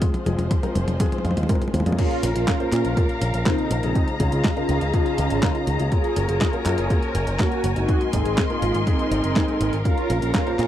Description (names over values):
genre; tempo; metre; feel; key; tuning
italo disco; 122 BPM; 4/4; straight; Bb minor; A4 = 440 Hz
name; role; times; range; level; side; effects
dark studio string section; sustained chords; 0.0-10.7 s; Db3 to C6; -29 LUFS; left 1 dB; none
warm baby grand piano; stabs; 0.0-10.7 s; Ab2 to C5; -29 LUFS; left 2 dB; none
detuned 8-bit digital drum machine; drums; 0.0-10.7 s; crash cymbal, handclaps, hi-hat, snare drum, toms; -26 LUFS; equal; small room ambience
electronic kick drum; drums; 0.0-10.4 s; none; -23 LUFS; equal; small room ambience
picked electric bass with an envelope filter; bass; 0.3-10.7 s; F1 to Bb2; -24 LUFS; equal; none
mellow synth brass; melody; 2.0-10.7 s; Ab3 to Ab4; -25 LUFS; right 1 dB; chorus, tape echo
room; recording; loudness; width
little or no reverb; dry, close 1970s-style studio recording; -19 LUFS; side -11 dB against mid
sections
0.0-2.0 A section; 2.0-10.7 B section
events
drum fill 0.0-2.0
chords
0.0 Fm; 2.0 Bbm; 4.0 Dbadd9; 5.9 Gbadd9; 7.9 Abadd9; 9.9 Bbm